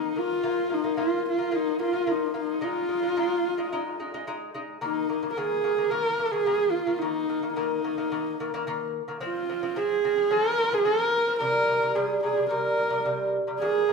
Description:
mongolian traditional, Mongolian folk; 109 BPM; 4/4; straight; A4 = 440 Hz
warm horsehead fiddle; melody; 0.0-13.9 s; Eb4 to Bb4; -25 LUFS; right 1 dB
lute; arpeggios; 0.0-13.9 s; C3 to F4; -30 LUFS; left 2 dB
wet stone room reverb, RT60 1.1 s; band playing live in one room; -24 LUFS; side -4 dB against mid
0.0-4.8 A section; 4.8-13.9 B section
0.4 Bb5; 2.6 Ab5; 4.8 Eb5; 9.2 F5; 11.4 C5
| 0.42 0.97 1.52 2.07 | 2.62 3.17 3.72 4.27 | 4.82 5.37 5.92 6.47 | 7.02 7.57 8.11 8.66 | 9.21 9.76 10.31 10.86 | 11.40 11.95 12.50 13.05 | 13.60

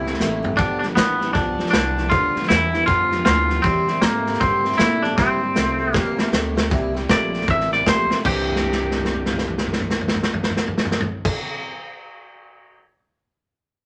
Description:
rockabilly; 156 BPM; 4/4; swing 62% on 8ths; C mixolydian; A4 = 440 Hz
twangy electric guitar; melody; 0.0-11.3 s; Bb3 to E5; -23 LUFS; equal
picked steel-string acoustic guitar; accompaniment; 0.0-11.8 s; G2 to G4; -32 LUFS; equal
electric guitar through a small old amp; riff; 0.0-11.8 s; G2 to D4; -31 LUFS; equal
upright bass; bass; 0.0-11.3 s; G1 to Bb2; -30 LUFS; equal
vintage drum kit; drums; 0.1-12.8 s; crash cymbal, hi-hat, kick drum, snare drum, toms; -24 LUFS; equal
moderate club reverb, RT60 0.5 s; -20 LUFS; mono
0.0-6.7 A section; 6.7-8.2 B section; 8.2-11.3 C section
drum fill 0.2-0.6, 5.2-6.7, 8.1, 8.4-11.2
0.0 C7; 0.6 G7; 3.6 C7; 8.2 C9
0.20 | 0.58 0.96 1.34 1.73 | 2.11 2.49 2.87 3.26 | 3.64 4.02 4.41 4.79 | 5.17 5.55 5.94 6.32 | 6.71 7.09 7.47 7.86 | 8.24 8.63 9.01 9.40 | 9.78 10.17 10.55 10.94

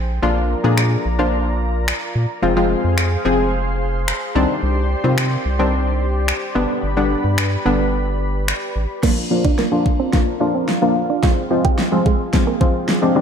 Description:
dance-pop; 109 BPM; 4/4; straight; A4 = 440 Hz
lush unison pad; sustained chords; 0.0-13.2 s; Eb3 to C6; -26 LUFS; left 1 dB; chorus, sidechain pumping, low-pass filter
round analog bass; bass; 0.0-8.9 s; F1 to C3; -20 LUFS; equal; sidechain pumping
punchy chord stab; accompaniment; 0.2-13.2 s; D3 to Ab4; -19 LUFS; left 2 dB; chorus, sidechain pumping, low-pass filter, slapback echo
pop drum kit; drums; 0.8-13.0 s; crash cymbal, finger snaps, kick drum, snare drum; -20 LUFS; equal; overdrive
direct-recorded clean electric guitar; riff; 9.0-13.2 s; G3 to G4; -24 LUFS; right 8 dB; analog chorus, low-pass filter, slapback echo
moderate lush hall reverb, RT60 1.7 s, digital ambience; big arena sound; -16 LUFS; side -7 dB against mid
0.0-9.0 A section; 9.0-13.2 B section
build-up 9.0-13.2; drum fill 9.0-13.2; filter sweep 9.0-13.2
0.2 Bb; 2.4 Fm; 4.4 Cmadd9; 6.6 G; 9.0 Bb; 11.2 Fm
| 0.23 0.78 1.33 1.88 | 2.43 2.98 3.53 4.08 | 4.63 5.18 5.73 6.28 | 6.83 7.38 7.93 8.48 | 9.03 9.58 10.13 10.69 | 11.23 11.79 12.34 12.89

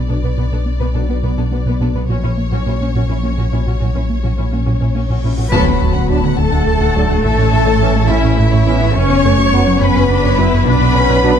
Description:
cinematic, hybrid orchestral and electronic film score; 70 BPM (dotted quarters); 6/8; straight; A4 = 440 Hz
rich studio violin section; melody; 0.0-11.4 s; B4 to A5; -27 LUFS; left 6 dB
thumb-piano-like synth pluck; arpeggios; 0.0-11.3 s; D3 to B4; -25 LUFS; right 1 dB; chorus, phaser, ping-pong delay
rubbery square bass; riff; 0.0-11.3 s; D2 to B3; -18 LUFS; right 2 dB
dark detuned saw bass; bass; 0.0-11.4 s; D1 to B1; -19 LUFS; left 1 dB
warm symphonic violin section; second line; 0.1-11.4 s; E4 to C#6; -24 LUFS; left 3 dB
warm symphonic viola section; accompaniment; 0.1-11.4 s; F#3 to E4; -23 LUFS; left 1 dB
dark French horn section; sustained chords; 0.1-11.4 s; E3 to D4; -21 LUFS; left 7 dB
rich symphonic cello section; bass; 0.1-11.4 s; A#2 to C#5; -21 LUFS; equal
reverse cymbal and impact; sound effects; 5.3-7.2 s; -25 LUFS; left 1 dB
warm symphonic double bass section; bass; 5.5-11.4 s; F#1 to D2; -19 LUFS; right 5 dB
clear trombone section; sustained chords; 6.1-11.3 s; E3 to D4; -23 LUFS; right 4 dB
moderate scoring stage reverb, RT60 1.6 s; dark, warm production; -12 LUFS; side -8 dB against mid
0.0-5.5 A section; 5.5-11.4 B section
reverse cymbal 5.3; band accent 5.5-6.1; impact 5.5-7.2
0.0 Bm; 2.1 F#/A#; 5.5 D; 7.2 A; 9.0 F#sus4; 10.7 Bm
| 0.38 1.24 | 2.10 2.95 | 3.81 4.67 | 5.52 6.38 | 7.24 8.10 | 8.95 9.81 | 10.67

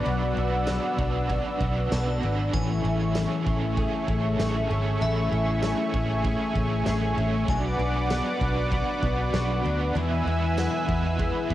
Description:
dream pop; 97 BPM; 4/4; straight; A major; A4 = 440 Hz
overdriven electric guitar; accompaniment; 0.0-11.5 s; E2 to G#4; -33 LUFS; right 6 dB; tremolo, ensemble chorus, cassette tape
warm analog pad; sustained chords; 0.0-11.5 s; A3 to E6; -29 LUFS; equal; chorus, cassette tape
fingerpicked twelve-string acoustic guitar; arpeggios; 0.0-11.5 s; E3 to G#4; -30 LUFS; left 6 dB; lush chorus, cassette tape, tape echo
vintage muted fingered electric bass; bass; 0.0-11.5 s; G#1 to E2; -27 LUFS; equal
glassy synth bell; texture; 0.0-11.5 s; E5 to B5; -40 LUFS; equal; chorus, phaser, cassette tape, tape echo
huge arena drum kit; drums; 0.1-11.5 s; kick drum, ride cymbal, snare drum, tambourine; -32 LUFS; equal; cassette tape
light reverb, small room reverb; home recording on cassette; -23 LUFS; side -14 dB against mid
0.0-11.5 A section
0.0 Bm; 2.5 Amaj7; 7.5 Bm; 10.0 E
| 0.06 0.68 1.30 1.92 | 2.54 3.15 3.77 4.39 | 5.01 5.63 6.25 6.87 | 7.48 8.10 8.72 9.34 | 9.96 10.58 11.19

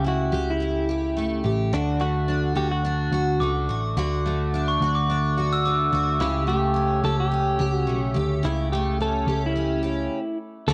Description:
acoustic pop; 107 BPM; 4/4; swing 55% on 16ths; A4 = 439 Hz
clean electric guitar; melody; 0.0-10.7 s; D4 to A4; -29 LUFS; equal
picked steel-string acoustic guitar; accompaniment; 0.0-10.7 s; C#3 to G4; -29 LUFS; equal; double-tracked
hollow-body short-scale picked electric bass; bass; 0.0-10.7 s; A1 to D2; -28 LUFS; equal
glockenspiel with soft plastic mallets; second line; 3.4-6.1 s; C#6 to E6; -30 LUFS; equal; slapback echo
moderate spring reverb, RT60 1.8 s, small room ambience; -24 LUFS; mono
0.0-10.7 A section
stop 10.1-10.7
0.0 A7; 1.7 D; 6.2 A7
0.05 0.61 1.17 | 1.73 2.29 2.85 3.41 | 3.97 4.53 5.09 5.65 | 6.21 6.77 7.33 7.88 | 8.44 9.00 9.56 10.12 | 10.68

